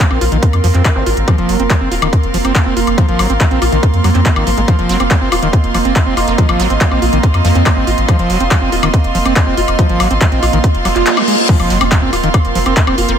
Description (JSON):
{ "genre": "psychedelic trance", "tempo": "141 BPM", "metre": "4/4", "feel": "straight", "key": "unclear", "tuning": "A4 = 441 Hz", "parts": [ { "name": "evolving wavetable pad", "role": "sustained chords", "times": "0.0-13.2 s", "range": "Bb3 to Eb5", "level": "-19 LUFS", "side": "right 4 dB", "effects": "chorus, built-in reverb, sidechain pumping" }, { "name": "screaming distorted acid line", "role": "riff", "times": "0.0-13.0 s", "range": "Eb3 to F4", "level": "-19 LUFS", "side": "moving between left 2 dB and right 4 dB", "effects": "distortion, chorus, auto-pan, vintage 12-bit sampler grit, sidechain pumping, dub echo" }, { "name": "drum and bass drum kit", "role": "drums", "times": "0.0-13.2 s", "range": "crash cymbal, handclaps, hi-hat, woodblock", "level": "-19 LUFS", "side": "left 2 dB", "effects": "overdrive" }, { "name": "electronic kick drum", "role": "drums", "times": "0.0-12.9 s", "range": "none", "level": "-11 LUFS", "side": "equal", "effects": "overdrive" }, { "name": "rich chamber string section", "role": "texture", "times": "0.0-13.2 s", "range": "C4 to C6", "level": "-20 LUFS", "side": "right 1 dB", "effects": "sidechain pumping" }, { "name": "round analog bass", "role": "bass", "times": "0.1-13.2 s", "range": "Eb1 to F2", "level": "-16 LUFS", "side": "equal", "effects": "none" }, { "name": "zap, reverse cymbal and impact", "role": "sound effects", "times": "1.0-1.1, 10.9-13.2 s", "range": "none", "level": "-21 LUFS", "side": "left 3 dB", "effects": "none" }, { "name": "resonant blip pluck", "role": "second line", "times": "4.9-8.0, 11.7-13.2 s", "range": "Bb3 to C4", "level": "-29 LUFS", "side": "right 3 dB", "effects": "none" } ], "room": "light reverb, digital ambience", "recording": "none", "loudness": "-10 LUFS", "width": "side -8 dB against mid", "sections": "0.0-11.5 A section; 11.5-13.2 B section", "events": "reverse cymbal 10.9-11.5; kick drops out 11.1-11.5; drop 11.5-13.2; impact 11.5-13.2", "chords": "0.0 F5" }